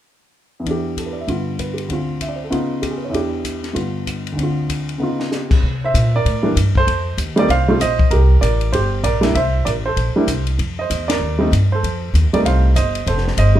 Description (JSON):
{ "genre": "jazz piano trio", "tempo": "194 BPM", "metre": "4/4", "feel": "swing 61% on 8ths", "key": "C mixolydian", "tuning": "A4 = 440 Hz", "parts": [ { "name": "dark baby grand piano", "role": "melody", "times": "0.6-13.6 s", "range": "D2 to F5", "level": "-19 LUFS", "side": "right 2 dB", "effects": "none" }, { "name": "compact cocktail drum kit", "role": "drums", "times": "0.7-13.5 s", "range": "crash cymbal, hi-hat, kick drum, ride cymbal, snare drum", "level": "-24 LUFS", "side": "left 2 dB", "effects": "none" }, { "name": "upright bass", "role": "bass", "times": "5.6-13.6 s", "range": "F1 to C3", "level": "-17 LUFS", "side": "equal", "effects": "none" } ], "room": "light reverb", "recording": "minimal, uncompressed stereo recording", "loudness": "-16 LUFS", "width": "side -12 dB against mid", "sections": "0.7-5.6 A section; 5.6-13.6 B section", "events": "drum fill 5.0-5.3; band accent 11.1", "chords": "0.7 Em7; 1.3 G7; 1.9 Dm7; 2.5 Db9; 3.1 Em7; 3.8 G7; 4.4 Dm7; 5.0 Db9; 5.6 C7; 6.9 F7; 8.1 C7; 10.6 F7" }